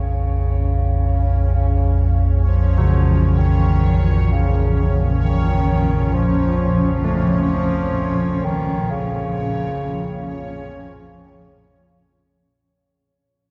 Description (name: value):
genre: dark ambient drone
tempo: free time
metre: none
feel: none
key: Bb harmonic minor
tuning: A4 = 442 Hz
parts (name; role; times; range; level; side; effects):
- warm bass clarinet; melody; 0.0-10.7 s; Db3 to F3; -26 LUFS; equal; diffuse ambient delay
- granular cloud pad; sustained chords; 0.9-12.6 s; Bb2 to Db4; -27 LUFS; equal; built-in reverb
- deep rumbling drone; drone; 0.0-12.7 s; Bb1 to F2; -21 LUFS; equal; built-in reverb, lush chorus
- bubbling stepped-filter texture; texture; 0.0-12.6 s; Db4 to Db5; -33 LUFS; equal; chorus, built-in reverb
- carillon bells; arpeggios; 2.8-12.6 s; Db3 to A3; -27 LUFS; equal; diffuse ambient delay
room: wet huge ambient reverb, RT60 7.7 s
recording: dark, warm production, nothing above 8.0 kHz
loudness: -18 LUFS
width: mono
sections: 0.0-12.6 A section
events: fade-in on ambient pad 0.0-12.6; fade-in on synth texture 0.0-12.6; fade-in on bass clarinet 0.0-12.6; fade-out 7.7-12.6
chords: 0.0 Bbm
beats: free time